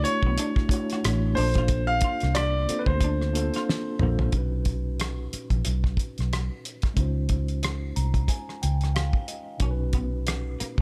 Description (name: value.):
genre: R&B, neo-soul.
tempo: 91 BPM.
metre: 4/4.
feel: swing 58% on 16ths.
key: unclear.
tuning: A4 = 442 Hz.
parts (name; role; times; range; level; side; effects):
clear baby grand piano; melody; 0.0-4.0 s; B4 to E#5; -31 LUFS; equal; none.
mellow tine electric piano; accompaniment; 0.0-10.8 s; A#2 to A#5; -35 LUFS; equal; none.
vintage muted fingered electric bass; bass; 0.0-10.8 s; A1 to D2; -28 LUFS; equal; none.
cloth-damped thuddy drum kit; drums; 0.0-10.8 s; hi-hat, kick drum, rim click, snare drum, toms; -29 LUFS; equal; none.
electric guitar through a small old amp; second line; 0.1-4.2, 9.6-10.7 s; A#3 to F#4; -39 LUFS; equal; lush chorus.
room: small room ambience.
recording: none.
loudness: -26 LUFS.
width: mono.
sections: 0.0-4.3 A section; 4.3-10.8 B section.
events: drum fill 3.7-4.3; tine electric piano fill 7.6-9.6.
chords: 0.0 Dmaj9; 1.4 A#maj9; 4.3 Bmaj9; 7.0 C#maj9; 9.6 Bmaj9.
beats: 0.37 1.03 | 1.69 2.35 3.01 3.67 | 4.33 4.99 5.65 6.31 | 6.97 7.63 8.29 8.95 | 9.61 10.26.